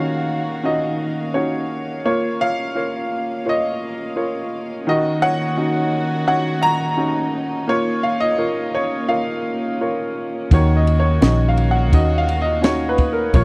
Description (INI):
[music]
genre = acoustic folk-pop ballad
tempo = 85 BPM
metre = 4/4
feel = straight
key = Eb minor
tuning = A4 = 440 Hz
[part]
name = clear upright piano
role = melody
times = 0.0-13.4 s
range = Eb3 to Bb5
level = -22 LUFS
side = equal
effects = tape echo
[part]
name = dark studio string section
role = sustained chords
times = 0.0-13.4 s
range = Eb3 to F5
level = -29 LUFS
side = equal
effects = none
[part]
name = vintage muted fingered electric bass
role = bass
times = 10.5-13.4 s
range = Bb1 to Eb2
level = -20 LUFS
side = equal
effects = none
[part]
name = compact cocktail drum kit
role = drums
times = 10.5-13.4 s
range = kick drum, ride cymbal, snare drum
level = -17 LUFS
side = equal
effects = none
[sound]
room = little or no reverb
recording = dry, close 1970s-style studio recording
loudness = -20 LUFS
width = mono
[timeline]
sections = 0.0-13.4 A section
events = none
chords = 0.0 Ebm7; 2.0 Bbm; 4.9 Ebm7; 7.7 Bbm; 10.5 Ebm7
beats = 0.64 1.34 | 2.05 2.75 3.46 4.16 | 4.87 5.57 6.28 6.98 | 7.68 8.39 9.10 9.80 | 10.51 11.22 11.93 12.63 | 13.34